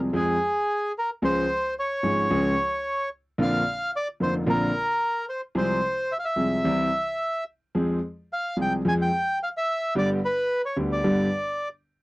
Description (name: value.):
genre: tango.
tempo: 110 BPM.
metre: 4/4.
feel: rubato.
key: F harmonic minor.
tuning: A4 = 439 Hz.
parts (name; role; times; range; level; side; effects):
warm grand piano; accompaniment; 0.0-11.3 s; F1 to Ab4; -24 LUFS; equal; none.
bandoneon; melody; 0.2-11.7 s; Ab4 to Ab5; -25 LUFS; equal; none.
room: light reverb.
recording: dry, close 1970s-style studio recording.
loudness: -23 LUFS.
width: side -21 dB against mid.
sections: 0.0-12.0 A section.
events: none.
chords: 0.0 Fm; 1.2 Db; 3.4 Bbadd9; 5.5 Fm/C; 6.6 C; 7.8 Fm; 9.9 G.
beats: 0.13 0.68 | 1.22 1.77 2.31 2.85 | 3.39 3.93 4.47 5.01 | 5.55 6.09 6.64 7.20 | 7.75 8.30 8.85 9.40 | 9.95 10.49 11.04 11.58.